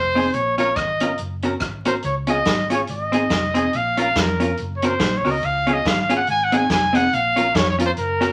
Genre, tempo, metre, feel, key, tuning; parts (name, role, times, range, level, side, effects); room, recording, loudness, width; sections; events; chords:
ska; 142 BPM; 4/4; swing 57% on 8ths; A4 = 439 Hz
clear trumpet; melody; 0.0-8.3 s; Bb4 to Ab5; -23 LUFS; equal
hollow-body short-scale fingered electric bass; bass; 0.0-8.3 s; F1 to F2; -31 LUFS; equal
vintage hollow-body jazz guitar; accompaniment; 0.2-8.3 s; C4 to Bb4; -24 LUFS; equal
swinging big-band drum kit; drums; 0.2-8.3 s; hi-hat, kick drum, rim click, snare drum; -26 LUFS; equal
wet club reverb, RT60 0.5 s; vinyl crackle; -20 LUFS; mono
0.0-8.3 A section
trumpet solo 0.0-8.3
0.3 Bbm; 1.2 Gb; 2.0 Db; 2.9 Ab; 3.7 Bbm; 4.6 Gb; 5.4 Db; 6.3 Ab; 7.1 Bbm